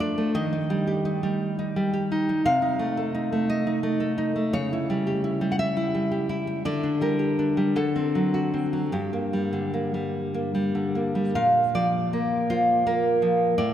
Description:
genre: romantic piece for solo classical guitar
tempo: 48-59 BPM (dotted quarters)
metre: 6/8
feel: rubato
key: G minor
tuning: A4 = 444 Hz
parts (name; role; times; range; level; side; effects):
- nylon-string guitar; solo; 0.0-13.7 s; G2 to F#5; -22 LUFS; equal; none
room: wet cathedral reverb, RT60 4.9 s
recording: recorded in a church or concert hall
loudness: -22 LUFS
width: side -10 dB against mid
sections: 0.0-11.4 A section; 11.4-13.7 B section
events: none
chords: 0.4 Eb; 2.5 Adim/C; 4.5 C#dim; 6.7 Gm/D; 7.8 D7; 8.9 Gm; 11.4 Bb

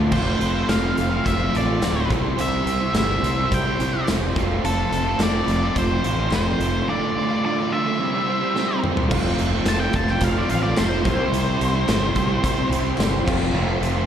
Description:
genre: classic rock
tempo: 108 BPM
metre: 4/4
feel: straight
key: unclear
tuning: A4 = 440 Hz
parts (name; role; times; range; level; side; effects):
- bright tonewheel organ; sustained chords; 0.0-14.1 s; C4 to D5; -36 LUFS; left 1 dB; none
- overdriven semi-hollow guitar; riff; 0.0-14.1 s; D2 to C5; -24 LUFS; right 8 dB; slapback echo
- raw garage guitar; riff; 0.0-14.1 s; D2 to C5; -27 LUFS; left 8 dB; overdrive, slapback echo
- growling fingered electric bass; bass; 0.0-14.0 s; D1 to D2; -24 LUFS; left 1 dB; overdrive
- octave-fuzz lead guitar; melody; 0.1-12.7 s; A4 to A5; -26 LUFS; left 1 dB; distortion, slapback echo, analog delay
- big rock drum kit; drums; 0.1-14.0 s; crash cymbal, hi-hat, kick drum, snare drum, tambourine, toms; -26 LUFS; equal; none
- group handclap; percussion; 0.7-13.1 s; none; -40 LUFS; left 2 dB; none
- reed electric piano; accompaniment; 9.1-14.1 s; E4 to F5; -33 LUFS; left 2 dB; none
room: studio ambience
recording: live gig heard through the venue's PA, recital hall reverb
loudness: -19 LUFS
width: side -9 dB against mid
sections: 0.0-9.1 A section; 9.1-14.1 B section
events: drum fill 8.5-9.1; lead electric guitar solo 9.1-14.1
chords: 0.1 F; 2.1 C; 4.4 F; 6.9 Dm; 8.0 C; 9.1 F; 11.0 C; 13.3 F

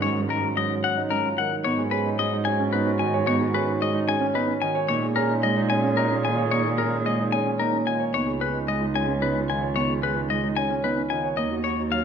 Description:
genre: classical, minimalist pattern music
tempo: 111 BPM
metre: 3/4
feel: straight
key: G# dorian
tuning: A4 = 439 Hz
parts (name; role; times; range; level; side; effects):
- clean electric guitar; melody; 0.0-12.0 s; A#4 to G#5; -26 LUFS; left 8 dB; none
- mellow clarinet; second line; 0.0-12.0 s; C#4 to G#4; -34 LUFS; right 4 dB; none
- Celtic harp; accompaniment; 0.0-12.0 s; D#3 to C#4; -27 LUFS; right 1 dB; none
- dark concert grand piano; arpeggios; 0.0-12.0 s; C#4 to C#5; -29 LUFS; right 6 dB; none
- rich cello; bass; 0.0-12.0 s; C#2 to A#2; -29 LUFS; right 3 dB; none
room: wet recital hall reverb, RT60 1.4 s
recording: none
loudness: -21 LUFS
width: side -7 dB against mid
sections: 0.0-1.6 A section; 1.6-12.0 B section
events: none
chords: 0.0 D#m7/G#; 1.6 G#m7; 4.9 A#m7; 8.1 C#7; 11.4 D#m7

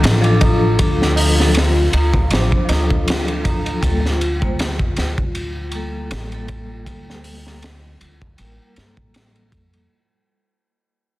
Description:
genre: trip hop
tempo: 79 BPM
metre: 4/4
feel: swing 55% on 16ths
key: unclear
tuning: A4 = 440 Hz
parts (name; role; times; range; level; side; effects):
- vibraphone with medium mallets; accompaniment; 0.0-9.9 s; F3 to C5; -23 LUFS; left 1 dB; tremolo, tape echo
- dark analog pad; sustained chords; 0.0-9.9 s; F4; -25 LUFS; left 1 dB; chorus
- upright bass; bass; 0.0-9.9 s; A1 to G2; -19 LUFS; equal; none
- crunchy breakbeat drum kit; drums; 0.0-9.9 s; hi-hat, kick drum, ride cymbal, snare drum; -19 LUFS; equal; none
- tabla; percussion; 0.0-3.8 s; none; -29 LUFS; right 4 dB; none
room: light reverb, small room reverb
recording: dense, heavily limited modern master, vinyl crackle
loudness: -15 LUFS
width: side -17 dB against mid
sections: 0.0-9.9 A section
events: fade-out 0.0-9.9; filter sweep on upright bass 0.0-9.9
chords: 0.0 Dm; 3.8 Gmadd9

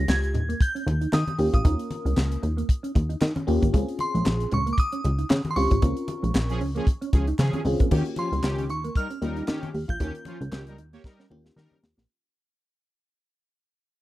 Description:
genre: early-eighties boogie funk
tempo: 115 BPM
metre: 4/4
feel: swing 56% on 16ths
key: unclear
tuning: A4 = 440 Hz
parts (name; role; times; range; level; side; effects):
- glassy synth bell; melody; 0.0-11.5 s; C6 to Bb6; -32 LUFS; right 1 dB; chorus
- FM electric piano with soft pad layer; accompaniment; 0.0-11.8 s; Bb3 to Bb4; -31 LUFS; left 2 dB; chorus, phaser
- mellow electric guitar; riff; 0.0-12.0 s; Ab3 to G4; -32 LUFS; right 4 dB; ensemble chorus
- plucky analog bass; bass; 0.0-12.1 s; Ab1 to Eb3; -25 LUFS; equal; none
- tight funk drum kit; drums; 0.1-12.1 s; crash cymbal, handclaps, hi-hat, kick drum, snare drum; -23 LUFS; equal; none
- congas; percussion; 0.1-11.8 s; none; -33 LUFS; left 2 dB; none
- analog synth brass; second line; 6.5-11.8 s; Eb3 to Db5; -33 LUFS; equal; chorus
room: little or no reverb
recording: dry, close 1970s-style studio recording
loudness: -22 LUFS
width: side -16 dB against mid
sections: 0.0-7.9 A section; 7.9-12.1 B section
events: band accent 5.8-7.9; fade-out 7.9-12.1; drum fill 11.0-12.1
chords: 0.0 Eb7; 3.7 Bbm9; 7.9 Eb7

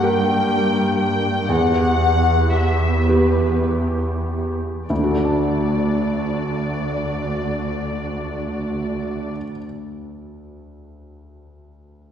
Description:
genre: cinematic, emotional film score for orchestra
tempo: 32-43 BPM (dotted quarters)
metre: 6/8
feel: rubato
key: D major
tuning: A4 = 440 Hz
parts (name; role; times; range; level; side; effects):
- muted studio violin section; melody; 0.0-9.3 s; B4 to G5; -24 LUFS; left 4 dB; none
- felt-muted upright piano; accompaniment; 0.0-12.1 s; D2 to A5; -23 LUFS; equal; none
- muted studio viola section; accompaniment; 0.0-9.3 s; Bb3 to G4; -27 LUFS; right 1 dB; none
- muted symphonic cello section; bass; 0.0-9.3 s; D2 to G2; -23 LUFS; right 1 dB; none
room: wet scoring stage reverb, RT60 2.0 s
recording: heard from further back in the room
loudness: -18 LUFS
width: side -8 dB against mid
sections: 0.0-4.9 A section; 4.9-8.6 B section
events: slowing down 0.0-4.9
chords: 0.0 Gm; 1.5 Em; 4.9 D

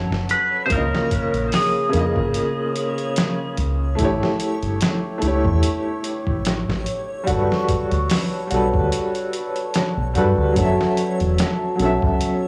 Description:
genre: trip hop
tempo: 73 BPM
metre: 4/4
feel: swing 55% on 16ths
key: F# phrygian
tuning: A4 = 437 Hz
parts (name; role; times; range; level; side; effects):
- clear upright piano; accompaniment; 0.0-12.5 s; C#3 to E5; -24 LUFS; equal; tremolo, tape echo
- deep dub fingered electric bass; bass; 0.0-12.2 s; E1 to G2; -24 LUFS; equal; none
- backwards swelling texture; texture; 0.0-12.5 s; C#5; -34 LUFS; equal; built-in reverb
- trip hop sampler-style drum kit; drums; 0.1-12.4 s; hi-hat, kick drum, snare drum; -26 LUFS; equal; studio reverb
- clean lap steel guitar; melody; 0.3-3.6 s; G#4 to B#4; -25 LUFS; equal; tape echo
- felt-muted upright piano; arpeggios; 10.6-12.5 s; F#3 to C#4; -30 LUFS; equal; vintage 12-bit sampler grit, analog delay
room: digital ambience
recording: dry, gritty hardware recording, small room reverb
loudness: -21 LUFS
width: mono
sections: 0.0-12.5 A section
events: none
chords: 0.0 F#m7; 0.7 C#69; 4.0 A7; 7.3 Gmaj9; 10.6 F#m7

